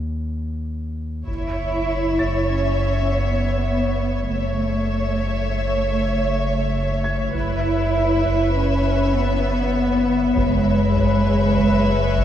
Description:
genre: cinematic, suspense film score.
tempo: 99 BPM.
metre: 5/4.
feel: straight.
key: F# minor.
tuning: A4 = 441 Hz.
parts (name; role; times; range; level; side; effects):
saturated sub bass; drone; 0.0-12.2 s; F#1 to Eb2; -26 LUFS; equal; none.
bright grand piano; texture; 0.0-12.2 s; G#6 to A6; -36 LUFS; equal; none.
rich studio violin section; melody; 1.3-12.2 s; E5; -30 LUFS; left 4 dB; none.
warm studio violin section; second line; 1.3-12.2 s; C#5; -28 LUFS; left 2 dB; none.
dark studio viola section; accompaniment; 1.3-12.2 s; B4 to C#5; -28 LUFS; equal; none.
dark studio double bass section; bass; 1.3-12.2 s; F#1; -25 LUFS; right 2 dB; none.
warm studio cello section; bass; 1.3-12.2 s; G#3 to E4; -22 LUFS; equal; none.
taiko ensemble; drums; 1.3-2.5, 7.3-12.2 s; none; -30 LUFS; equal; none.
room: wet church reverb, RT60 3.5 s.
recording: dark, warm production.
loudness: -18 LUFS.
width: side -10 dB against mid.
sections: 0.0-1.3 A section; 1.3-12.2 B section.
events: break 0.0-1.3.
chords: 0.0 N.C.; 1.3 F#m7.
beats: 0.06 0.67 | 1.28 1.88 2.49 3.10 3.70 | 4.31 4.91 5.52 6.12 6.73 | 7.34 7.94 8.55 9.15 9.76 | 10.37 10.97 11.58 12.19.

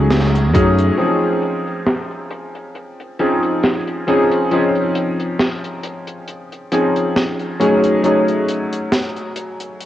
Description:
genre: vaporwave.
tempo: 68 BPM.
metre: 4/4.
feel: swing 55% on 16ths.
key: Db major.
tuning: A4 = 440 Hz.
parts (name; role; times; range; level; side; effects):
warm electric grand piano; accompaniment; 0.0-9.9 s; F3 to Ab4; -17 LUFS; left 1 dB; lush chorus, cassette tape, tape echo.
mellow fretless electric bass; bass; 0.0-0.9 s; Db2 to Gb2; -15 LUFS; right 1 dB; none.
deep reggae drum kit; drums; 0.1-9.9 s; hi-hat, snare drum; -21 LUFS; equal; low-pass filter on hats, vintage 12-bit sampler grit, cassette tape, low-pass filter on snare, low-pass filter on room.
electronic kick drum; drums; 0.5-0.7 s; none; -17 LUFS; right 1 dB; overdrive, vintage 12-bit sampler grit, cassette tape.
room: wet spring reverb, RT60 2.5 s.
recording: home recording on cassette.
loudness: -14 LUFS.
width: side -12 dB against mid.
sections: 1.0-9.9 A section.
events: band accent 0.1-0.6; filter sweep on drum 1.0-9.9.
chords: 0.0 Gbm6; 1.0 Dbmaj7; 7.6 Gbm6.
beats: 0.11 | 0.99 1.87 2.76 3.64 | 4.52 5.40 6.29 7.17 | 8.05 8.93 9.81.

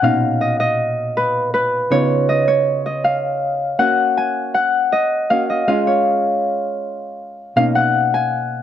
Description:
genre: progressive instrumental, progressive.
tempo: 159 BPM.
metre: 5/4.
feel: straight.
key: unclear.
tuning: A4 = 442 Hz.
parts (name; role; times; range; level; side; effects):
Celtic harp; melody; 0.0-8.6 s; B4 to G#5; -17 LUFS; left 1 dB; none.
hollow-body jazz guitar; accompaniment; 0.0-8.6 s; A#2 to F#4; -22 LUFS; equal; none.
room: light reverb.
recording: dry, close 1970s-style studio recording.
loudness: -15 LUFS.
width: side -10 dB against mid.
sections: 0.0-8.6 A section.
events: none.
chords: 0.0 Bmaj7; 1.9 C#7; 3.8 F#; 5.7 C#; 7.6 Bmaj7.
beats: | 0.03 0.40 0.78 1.16 1.53 | 1.91 2.29 2.66 3.04 3.42 | 3.79 4.17 4.55 4.92 5.30 | 5.68 6.06 6.44 6.82 7.19 | 7.57 7.95 8.33.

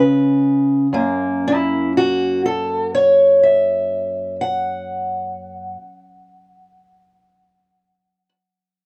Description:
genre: acoustic country blues, solo or duo.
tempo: 41 BPM (dotted quarters).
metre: 12/8.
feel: straight.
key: F# mixolydian.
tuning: A4 = 440 Hz.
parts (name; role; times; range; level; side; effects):
fingerpicked steel-string acoustic guitar; solo; 0.0-8.3 s; F#2 to F#5; -18 LUFS; equal; none.
room: light reverb.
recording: dry, close 1970s-style studio recording.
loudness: -18 LUFS.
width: mono.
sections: 0.9-6.8 A section.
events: none.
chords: 0.0 C#5; 0.9 F#7.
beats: | 0.92 2.39 3.86 5.33.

